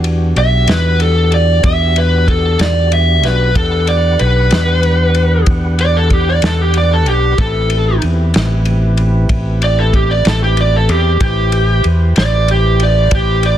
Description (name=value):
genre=slow blues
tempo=63 BPM (dotted quarters)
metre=12/8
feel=straight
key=E minor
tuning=A4 = 440 Hz
part: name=tonewheel organ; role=sustained chords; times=0.0-13.6 s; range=B3 to F#5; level=-24 LUFS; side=right 1 dB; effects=slow rotary speaker
part: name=fingered electric bass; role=bass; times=0.0-13.6 s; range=A1 to E2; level=-13 LUFS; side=equal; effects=none
part: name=warm soul drum kit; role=drums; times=0.0-13.6 s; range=kick drum, ride cymbal, snare drum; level=-18 LUFS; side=equal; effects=none
part: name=lead guitar through a small cranked amp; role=melody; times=0.4-13.6 s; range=G4 to E5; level=-15 LUFS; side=equal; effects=overdrive
room=small room ambience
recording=dense, heavily limited modern master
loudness=-10 LUFS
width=side -11 dB against mid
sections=0.0-13.6 A section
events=lead electric guitar solo 0.0-13.6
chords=0.0 Em7; 7.4 Am7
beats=0.68 1.64 2.60 | 3.55 4.51 5.47 6.43 | 7.38 8.34 9.30 10.25 | 11.21 12.16 13.12